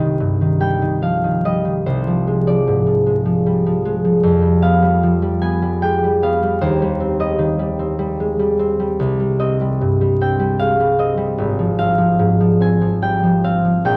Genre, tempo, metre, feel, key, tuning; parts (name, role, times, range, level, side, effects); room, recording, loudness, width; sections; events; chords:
classical, solo harp piece; 75 BPM; 3/4; rubato; C minor; A4 = 441 Hz
concert harp; solo; 0.0-14.0 s; Ab1 to Ab5; -17 LUFS; equal
moderate recital hall reverb, RT60 1.6 s; worn, warbling old tape, cassette tape, vinyl crackle, warbly pitch drift; -17 LUFS; mono
0.0-14.0 A section
0.0 Cm; 1.9 Ddim/C; 4.2 G7/F; 6.6 Cm/Eb; 9.0 Cm; 11.4 Fm/Ab